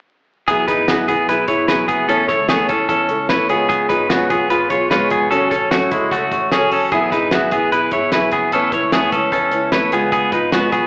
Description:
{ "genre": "jangly indie pop", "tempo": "149 BPM", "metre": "4/4", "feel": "straight", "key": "E major", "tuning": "A4 = 439 Hz", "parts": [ { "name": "fingerpicked plugged-in steel-string acoustic guitar", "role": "accompaniment", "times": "0.5-10.9 s", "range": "C#3 to E5", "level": "-19 LUFS", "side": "equal", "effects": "none" }, { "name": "direct-recorded clean electric guitar", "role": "arpeggios", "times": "0.5-10.9 s", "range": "G#3 to C#5", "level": "-16 LUFS", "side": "equal", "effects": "spring reverb" }, { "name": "vintage muted picked electric bass", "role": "bass", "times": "0.5-10.9 s", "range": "E1 to E2", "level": "-35 LUFS", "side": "equal", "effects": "none" }, { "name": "cloth-damped thuddy drum kit", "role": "drums", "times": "0.5-10.8 s", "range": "hi-hat, kick drum, snare drum", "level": "-23 LUFS", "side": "equal", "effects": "none" } ], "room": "moderate recital hall reverb, RT60 1.5 s", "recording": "recorded in a church or concert hall, vinyl crackle, AM radio sound", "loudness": "-14 LUFS", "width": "side -38 dB against mid", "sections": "0.5-10.9 A section", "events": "none", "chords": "0.5 Eadd9; 2.1 Aadd9; 3.5 C#7; 5.3 F#m; 6.9 Eadd9; 8.5 Aadd9; 9.9 C#7" }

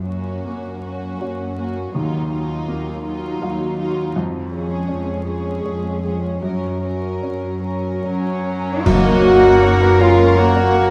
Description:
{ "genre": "cinematic, emotional film score for orchestra", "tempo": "70-82 BPM", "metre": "3/4", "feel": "rubato", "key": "F# major", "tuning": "A4 = 440 Hz", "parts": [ { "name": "clear grand piano", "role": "accompaniment", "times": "0.0-10.9 s", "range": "D#2 to E#5", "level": "-27 LUFS", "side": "equal", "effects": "none" }, { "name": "rich symphonic cello section", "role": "bass", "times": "0.0-10.9 s", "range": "D#2 to F#4", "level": "-22 LUFS", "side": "equal", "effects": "none" }, { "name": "warm symphonic violin section", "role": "melody", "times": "0.1-10.9 s", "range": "E#4 to D#5", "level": "-34 LUFS", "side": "equal", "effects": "none" }, { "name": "rich symphonic violin section", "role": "second line", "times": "0.1-10.9 s", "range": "C#4 to C#5", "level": "-31 LUFS", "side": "equal", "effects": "none" }, { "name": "dark symphonic viola section", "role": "accompaniment", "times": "0.1-10.9 s", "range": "F#3 to A#3", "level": "-31 LUFS", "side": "equal", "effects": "none" }, { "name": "concert flute", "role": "second line", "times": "8.0-10.9 s", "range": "C#5 to F#5", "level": "-27 LUFS", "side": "equal", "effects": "none" }, { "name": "dark cor anglais", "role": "second line", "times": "8.0-10.9 s", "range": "F#3 to A#3", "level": "-26 LUFS", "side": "equal", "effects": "none" }, { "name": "clear clarinet", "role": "second line", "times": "8.9-10.9 s", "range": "A#3 to D#4", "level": "-28 LUFS", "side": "equal", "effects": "none" }, { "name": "mellow French horn section", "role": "sustained chords", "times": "8.9-10.9 s", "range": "C#4 to A#4", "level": "-24 LUFS", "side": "equal", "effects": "none" }, { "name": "dark symphonic double bass section", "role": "bass", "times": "8.9-10.9 s", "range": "F#2", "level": "-20 LUFS", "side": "equal", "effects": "none" }, { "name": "clash cymbals and concert bass drum", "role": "percussion", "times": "8.9-10.3 s", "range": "none", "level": "-28 LUFS", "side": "equal", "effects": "none" }, { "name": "timpani", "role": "percussion", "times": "8.9-10.0 s", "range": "F#2", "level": "-27 LUFS", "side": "equal", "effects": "none" } ], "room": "wet scoring stage reverb, RT60 1.5 s", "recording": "dark, warm production, vinyl crackle", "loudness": "-18 LUFS", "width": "mono", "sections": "0.0-8.9 A section; 8.9-10.9 B section", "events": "band accent 8.9-9.6", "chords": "0.0 F#; 1.9 D#madd9; 4.2 C#/E#; 6.4 F#" }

